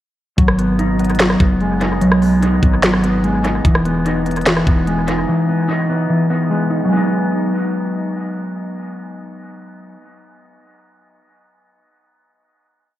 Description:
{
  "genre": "hip hop, trap",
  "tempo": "147 BPM",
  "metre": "4/4",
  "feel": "half-time",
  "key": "G# minor",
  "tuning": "A4 = 440 Hz",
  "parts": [
    { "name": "mellow electric guitar", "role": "accompaniment", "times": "0.4-10.1 s", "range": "E3 to D#4", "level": "-16 LUFS", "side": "equal", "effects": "lush chorus, low-pass filter, dub echo" },
    { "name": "long sustained 808-style bass", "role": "bass", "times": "0.4-5.3 s", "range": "E1 to B1", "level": "-22 LUFS", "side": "equal", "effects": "none" },
    { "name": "trap drum kit", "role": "drums", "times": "0.4-5.2 s", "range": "finger snaps, hi-hat, kick drum, rim click, snare drum", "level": "-18 LUFS", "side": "equal", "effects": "dub echo" }
  ],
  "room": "light reverb",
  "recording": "echo-heavy mix, cassette tape",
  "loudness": "-14 LUFS",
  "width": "side -13 dB against mid",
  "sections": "0.4-6.9 hook; 6.9-10.2 final chord",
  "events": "none",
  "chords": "0.4 G#m7; 3.6 Emaj7; 6.9 G#m7",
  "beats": "| 0.38 0.79 1.20 1.61 | 2.02 2.42 2.83 3.24 | 3.65 4.06 4.46 4.87 | 5.28 5.69 6.10 6.50 | 6.91 7.32 7.73 8.14 | 8.54 8.95 9.36 9.77"
}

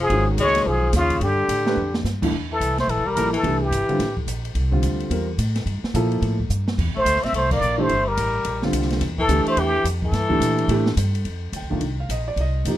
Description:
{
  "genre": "modal jazz",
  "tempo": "215 BPM",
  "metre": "4/4",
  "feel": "swing 61% on 8ths",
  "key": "C mixolydian",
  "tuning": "A4 = 439 Hz",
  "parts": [
    { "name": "trumpet with plunger mute", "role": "melody", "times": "0.0-4.2, 7.0-10.9 s", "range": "F4 to E5", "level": "-22 LUFS", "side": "equal", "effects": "none" },
    { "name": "warm tenor saxophone", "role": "second line", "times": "0.0-4.2, 7.0-10.9 s", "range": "Db3 to C4", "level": "-27 LUFS", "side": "left 4 dB", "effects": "none" },
    { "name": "upright bass", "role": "bass", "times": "0.0-12.8 s", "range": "E1 to Bb2", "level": "-24 LUFS", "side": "equal", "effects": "none" },
    { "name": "warm baby grand piano", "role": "accompaniment", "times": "0.1-12.8 s", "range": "C2 to G5", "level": "-24 LUFS", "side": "right 1 dB", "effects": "none" },
    { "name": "open jazz drum kit", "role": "drums", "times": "0.1-12.7 s", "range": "crash cymbal, hi-hat, kick drum, ride cymbal, snare drum", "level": "-30 LUFS", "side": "equal", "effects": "none" }
  ],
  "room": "light reverb",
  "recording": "close, detailed microphones",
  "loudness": "-19 LUFS",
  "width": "side -13 dB against mid",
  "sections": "0.0-2.3 A section; 2.3-11.3 B section; 11.3-12.8 C section",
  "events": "drum fill 1.8, 6.5; band accent 7.5",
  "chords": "0.0 Db9; 1.2 G7sus2; 2.3 C13; 11.3 F9sus4",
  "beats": "| 0.10 0.38 0.66 0.94 | 1.22 1.49 1.77 2.05 | 2.33 2.60 2.88 3.16 | 3.44 3.72 4.00 4.28 | 4.55 4.83 5.11 5.39 | 5.67 5.95 6.23 6.50 | 6.78 7.06 7.34 7.62 | 7.90 8.18 8.46 8.74 | 9.02 9.30 9.58 9.86 | 10.14 10.41 10.70 10.97 | 11.25 11.53 11.81 12.09 | 12.37 12.65"
}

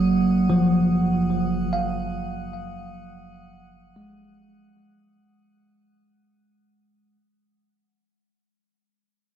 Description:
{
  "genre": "ambient",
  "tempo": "free time",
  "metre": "none",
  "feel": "none",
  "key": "unclear",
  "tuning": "A4 = 440 Hz",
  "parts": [
    { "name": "bell-like tine electric piano", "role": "arpeggios", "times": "0.0-7.2 s", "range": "E#3 to E#5", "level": "-21 LUFS", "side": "right 1 dB", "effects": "ping-pong delay" },
    { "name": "deep rumbling drone", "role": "bass", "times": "0.0-5.1 s", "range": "F#1", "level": "-36 LUFS", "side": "left 1 dB", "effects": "built-in reverb, phaser" },
    { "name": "drifting glass-harmonics texture", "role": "texture", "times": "0.0-5.2 s", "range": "F#5 to D#6", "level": "-36 LUFS", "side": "left 1 dB", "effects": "chorus, built-in reverb" }
  ],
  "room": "wet cathedral reverb, RT60 5.8 s",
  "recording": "dark, warm production",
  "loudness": "-20 LUFS",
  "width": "side -9 dB against mid",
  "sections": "0.0-5.2 A section",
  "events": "fade-out 0.0-5.2",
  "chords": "0.0 G#5/F#",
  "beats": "free time"
}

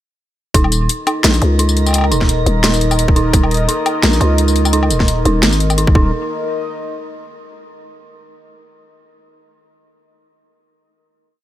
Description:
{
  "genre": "half-time drum and bass",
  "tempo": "172 BPM",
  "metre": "4/4",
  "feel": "swing 56% on 16ths, half-time",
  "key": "unclear",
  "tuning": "A4 = 442 Hz",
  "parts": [
    { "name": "dark analog pad", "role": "sustained chords", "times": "0.5-7.5 s", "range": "Eb4 to Eb5", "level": "-23 LUFS", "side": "equal", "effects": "chorus, sidechain pumping" },
    { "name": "dark detuned synth bell", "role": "arpeggios", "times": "0.5-6.1 s", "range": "Eb4", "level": "-22 LUFS", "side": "right 2 dB", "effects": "chorus, vintage 12-bit sampler grit, dub echo" },
    { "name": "growling 808-style bass", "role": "bass", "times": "0.5-6.1 s", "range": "Eb1 to Db2", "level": "-15 LUFS", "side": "equal", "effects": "tube saturation" },
    { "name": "drum and bass drum kit", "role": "drums", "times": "0.5-5.9 s", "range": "hi-hat, snare drum, tambourine, woodblock", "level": "-17 LUFS", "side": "left 1 dB", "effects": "overdrive" },
    { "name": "electronic kick drum", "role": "drums", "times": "0.5-6.0 s", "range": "none", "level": "-13 LUFS", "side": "equal", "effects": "overdrive" },
    { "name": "metallic inharmonic drone", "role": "texture", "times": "1.1-6.1 s", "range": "Eb4", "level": "-26 LUFS", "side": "right 3 dB", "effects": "chorus, built-in reverb" }
  ],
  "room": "digital ambience",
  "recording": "none",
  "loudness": "-12 LUFS",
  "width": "side -13 dB against mid",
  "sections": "0.5-6.1 drop; 6.1-7.5 final note",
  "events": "drop 0.5-6.1",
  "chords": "0.5 Eb5",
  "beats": "| 0.55 0.89 1.24 1.59 | 1.94 2.29 2.64 2.99 | 3.33 3.68 4.03 4.38 | 4.73 5.08 5.43 5.78 | 6.13 6.47 6.82 7.17"
}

